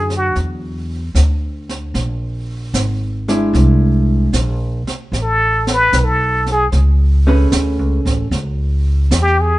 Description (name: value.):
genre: jazz ballad.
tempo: 75 BPM.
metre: 4/4.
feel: swing 68% on 8ths.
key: A major.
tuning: A4 = 442 Hz.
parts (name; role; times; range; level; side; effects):
trumpet with plunger mute; melody; 0.0-0.4, 5.2-9.6 s; F#4 to B4; -15 LUFS; left 1 dB; none.
vintage hollow-body jazz guitar; accompaniment; 0.0-8.3 s; D3 to B4; -18 LUFS; equal; none.
upright bass; bass; 0.0-9.6 s; Ab1 to F#2; -16 LUFS; equal; none.
jazz brush drum kit; drums; 0.1-9.6 s; brushed snare drum, hi-hat, kick drum, snare drum; -23 LUFS; right 2 dB; none.
room: light reverb.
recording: band playing live in one room, nothing above 10.7 kHz.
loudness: -13 LUFS.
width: side -17 dB against mid.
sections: 0.0-9.6 A section.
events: muted trumpet solo 0.0-9.6.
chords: 0.0 Dmaj9; 2.0 Bb7#11; 5.1 Amaj9; 8.3 C#m.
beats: 0.36 1.16 | 1.95 2.75 3.54 4.34 | 5.13 5.93 6.72 7.52 | 8.31 9.11.